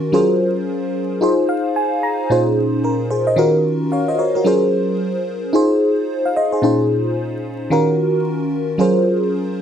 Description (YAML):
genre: R&B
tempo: 111 BPM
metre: 4/4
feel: swing 62% on 16ths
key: Bb minor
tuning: A4 = 444 Hz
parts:
  - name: FM electric piano with soft pad layer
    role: solo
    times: 0.0-9.6 s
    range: Bb2 to Bb5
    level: -15 LUFS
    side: equal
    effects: chorus, phaser
room: light reverb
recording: dry, close 1970s-style studio recording, vinyl crackle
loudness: -15 LUFS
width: side -8 dB against mid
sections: 0.0-9.6 A section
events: FM electric piano fill 1.2-2.3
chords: 0.1 Gbmaj9#11; 1.2 Fm7; 2.3 Bbm11; 3.4 Ebm7; 4.5 Gbmaj9#11; 5.5 Fm7; 6.6 Bbm11; 7.7 Ebm7; 8.8 Gbmaj9#11